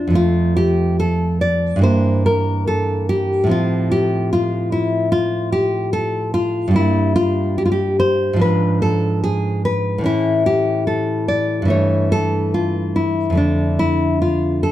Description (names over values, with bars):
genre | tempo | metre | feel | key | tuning
classical, baroque-style dance for nylon-string guitar | 73 BPM | 4/4 | rubato | unclear | A4 = 436 Hz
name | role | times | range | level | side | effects
nylon-string guitar | solo | 0.0-14.7 s | F2 to D5 | -15 LUFS | equal | none
room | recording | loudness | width
moderate recital hall reverb, RT60 1.5 s | dark, warm production | -15 LUFS | side -13 dB against mid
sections
0.0-14.7 A section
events
none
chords
0.0 F; 1.9 Edim/G; 3.5 F/A; 6.8 Gm7; 8.4 G#dim7; 10.1 A; 11.7 A5/G; 13.4 Dm/F